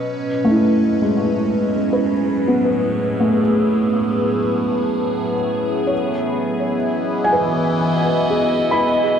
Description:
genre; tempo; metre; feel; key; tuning
ambient; 62 BPM; 3/4; straight; A lydian; A4 = 439 Hz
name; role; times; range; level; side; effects
evolving wavetable pad; sustained chords; 0.0-9.2 s; A2 to D#5; -19 LUFS; equal; phaser, built-in reverb
analog drone; drone; 2.5-9.2 s; B3 to E4; -25 LUFS; equal; chorus
felt-muted upright piano; arpeggios; 0.4-9.2 s; G#3 to B5; -19 LUFS; equal; diffuse ambient delay
room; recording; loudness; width
wet huge ambient reverb, RT60 8.2 s; dreamy mix soaked in reverb; -16 LUFS; side -8 dB against mid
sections
0.0-9.2 A section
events
fade-in on ambient pad 0.0-9.2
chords
0.1 Amaj9; 5.9 Emaj9

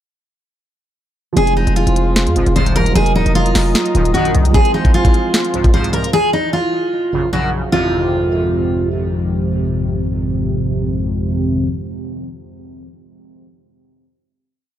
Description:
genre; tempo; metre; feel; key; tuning
hip hop, trap; 151 BPM; 4/4; half-time; F phrygian; A4 = 440 Hz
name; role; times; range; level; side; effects
dark baby grand piano; accompaniment; 1.3-6.2 s; F3 to Bb4; -22 LUFS; right 5 dB; none
picked steel-string acoustic guitar; melody; 1.4-8.9 s; Eb4 to C5; -17 LUFS; right 1 dB; tape echo
dark analog pad; sustained chords; 1.4-6.1 s; Ab4 to Eb6; -27 LUFS; left 1 dB; chorus
hard-hitting 808-style bass; bass; 1.4-4.5 s; Eb1 to F2; -15 LUFS; equal; none
trap drum kit; drums; 1.4-6.1 s; hi-hat, kick drum, snare drum; -16 LUFS; equal; none
resonant sweep polysynth; stabs; 2.4-11.7 s; Ab1 to F3; -20 LUFS; equal; chorus, tape echo
room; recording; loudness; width
little or no reverb; dark, warm production; -13 LUFS; side -11 dB against mid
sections
1.4-7.7 hook; 7.7-10.9 final chord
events
none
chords
1.4 Fm; 3.0 Ebm; 4.5 Fm; 6.1 Gb; 7.7 Fm

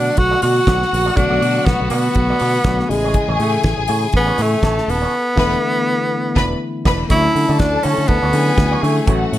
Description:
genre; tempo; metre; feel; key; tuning
disco; 121 BPM; 4/4; swing 56% on 16ths; unclear; A4 = 439 Hz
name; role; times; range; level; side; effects
breathy tenor saxophone; melody; 0.0-9.4 s; G#3 to F#4; -18 LUFS; equal; none
clear studio string section; second line; 0.0-9.4 s; F#4 to B5; -23 LUFS; left 3 dB; none
barky tine electric piano; accompaniment; 0.0-9.4 s; C#3 to G#4; -24 LUFS; left 4 dB; none
electric guitar with an envelope filter; accompaniment; 0.0-9.3 s; E4 to D5; -29 LUFS; right 10 dB; none
fingered electric bass; bass; 0.0-9.4 s; D#1 to D3; -20 LUFS; equal; none
damped 70s drum kit; drums; 0.2-9.4 s; crash cymbal, hi-hat, kick drum, snare drum; -20 LUFS; equal; none
room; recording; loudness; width
light reverb, small room ambience; none; -14 LUFS; side -13 dB against mid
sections
0.0-7.1 A section; 7.1-9.4 B section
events
band accent 5.1-7.1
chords
0.0 Bm7; 2.9 Amaj7; 5.1 E7sus4; 7.1 Dmaj9

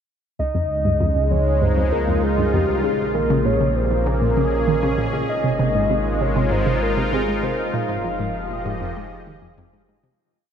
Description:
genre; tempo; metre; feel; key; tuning
ambient, sequencer-driven space music; 98 BPM; 4/4; straight; F minor; A4 = 439 Hz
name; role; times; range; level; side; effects
soft octave-layered synth lead; melody; 0.4-9.6 s; G4 to F5; -23 LUFS; equal; chorus, tape echo
sweeping resonant pad; sustained chords; 0.4-10.2 s; Bb2 to Eb5; -24 LUFS; equal; chorus
analog pluck; riff; 0.4-10.1 s; Db2 to Eb3; -24 LUFS; right 1 dB; chorus, tape echo
warm sub bass; bass; 0.4-10.2 s; F1 to Db2; -25 LUFS; equal; none
wind-like tuned noise texture; texture; 1.2-10.2 s; Eb5; -39 LUFS; right 5 dB; none
room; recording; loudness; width
wet huge ambient reverb, RT60 7.5 s; in a vast, echoing space; -18 LUFS; side -8 dB against mid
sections
0.4-10.2 A section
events
filter sweep on synth arpeggio sound 0.4-10.2; fade-out 6.9-10.2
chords
0.4 Db; 2.8 Bbm7; 5.3 Ab6; 7.7 Fm7

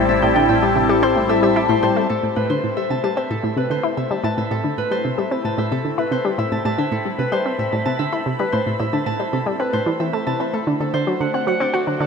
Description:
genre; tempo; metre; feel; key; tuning
ambient, sequencer-driven space music; 112 BPM; 4/4; straight; A dorian; A4 = 442 Hz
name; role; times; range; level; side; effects
phased analog pad; sustained chords; 0.0-12.1 s; G3 to B5; -23 LUFS; left 2 dB; phaser, chorus, shimmer reverb
concert harp; arpeggios; 0.0-12.1 s; F#4 to A5; -23 LUFS; equal; auto-pan, tape echo, shimmer reverb
analog pluck; riff; 0.0-12.1 s; A2 to F#4; -21 LUFS; equal; chorus, tape echo, shimmer reverb
fat analog bass; bass; 0.0-2.1 s; A1; -28 LUFS; equal; none
room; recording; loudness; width
wet plate reverb, RT60 3.5 s; none; -18 LUFS; side -5 dB against mid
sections
0.0-2.1 A section; 2.1-12.1 B section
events
fade-in on analog synth pad 2.1-12.1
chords
0.0 Am7; 2.1 Amadd9; 10.7 D7

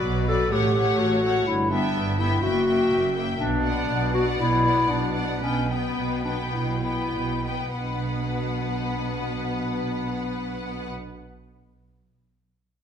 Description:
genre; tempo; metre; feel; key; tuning
classical; 95-126 BPM; 4/4; straight; B minor; A4 = 440 Hz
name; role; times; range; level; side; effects
clear symphonic violin section; melody; 0.0-10.9 s; D5 to G5; -33 LUFS; left 5 dB; none
rich symphonic violin section; second line; 0.0-10.9 s; B4 to E5; -32 LUFS; left 2 dB; none
warm clarinet; second line; 0.0-10.9 s; B3 to A4; -26 LUFS; left 2 dB; none
rich symphonic viola section; accompaniment; 0.0-10.9 s; F#3 to B3; -31 LUFS; left 1 dB; none
clear studio cello section; bass; 0.0-10.9 s; F#2 to B2; -31 LUFS; right 2 dB; none
rich symphonic double bass section; bass; 0.0-10.9 s; F#1 to B1; -30 LUFS; right 4 dB; none
room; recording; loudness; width
wet recital hall reverb, RT60 1.4 s; minimal, uncompressed stereo recording, faint mains hum; -22 LUFS; side -8 dB against mid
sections
0.0-7.8 A section; 7.8-12.4 B section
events
slowing down 2.4-7.8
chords
0.0 Bm; 0.5 F#m/A; 1.5 Em/G; 2.4 F#7b9; 3.4 Bm

